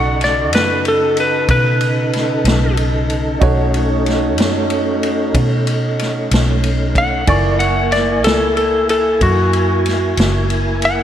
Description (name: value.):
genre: slow blues.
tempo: 62 BPM (dotted quarters).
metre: 12/8.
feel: straight.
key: B mixolydian.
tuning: A4 = 440 Hz.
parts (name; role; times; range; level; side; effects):
clean lap steel guitar; melody; 0.0-11.0 s; F#4 to F#5; -16 LUFS; left 1 dB; slapback echo.
clear baby grand piano; accompaniment; 0.0-11.0 s; A#3 to C#6; -24 LUFS; right 6 dB; slapback echo.
tonewheel organ; sustained chords; 0.0-11.0 s; C#3 to G#5; -21 LUFS; left 1 dB; chorus vibrato, slow rotary speaker.
vintage muted fingered electric bass; bass; 0.0-11.0 s; F#1 to B2; -18 LUFS; equal; none.
vintage drum kit; drums; 0.2-11.0 s; kick drum, ride cymbal, snare drum; -21 LUFS; equal; none.
room: moderate lush hall reverb, RT60 2.7 s.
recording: big arena sound.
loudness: -13 LUFS.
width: side -10 dB against mid.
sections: 0.0-11.0 A section.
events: electric slide guitar solo 0.0-11.0.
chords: 0.0 B9; 7.3 F#9.